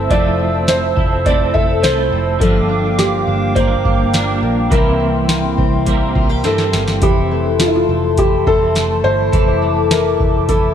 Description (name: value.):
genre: dream pop.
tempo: 104 BPM.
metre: 4/4.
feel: straight.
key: F major.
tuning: A4 = 440 Hz.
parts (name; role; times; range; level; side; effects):
felt-muted upright piano; melody; 0.0-10.7 s; E4 to E5; -19 LUFS; right 1 dB; ping-pong delay.
clean electric guitar; accompaniment; 0.0-7.5 s; C3 to Bb4; -23 LUFS; right 4 dB; tremolo, ensemble chorus.
hollow soft pad; sustained chords; 0.0-10.7 s; Bb3 to E6; -22 LUFS; right 1 dB; chorus.
fingerpicked twelve-string acoustic guitar; arpeggios; 0.0-10.7 s; E3 to A4; -19 LUFS; left 4 dB; wide subtle chorus, ping-pong delay.
vintage muted picked electric bass; bass; 0.0-10.7 s; F1 to G2; -20 LUFS; equal; none.
booming analog drum machine; drums; 0.1-10.7 s; hi-hat, kick drum, snare drum, tambourine; -17 LUFS; equal; none.
room: light reverb, digital ambience.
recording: none.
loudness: -12 LUFS.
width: side -9 dB against mid.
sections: 0.0-7.0 A section; 7.0-10.7 A section.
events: drum fill 6.4-7.0.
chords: 0.0 Fmaj7; 2.4 Gm7; 4.7 C7; 7.0 Fmaj7.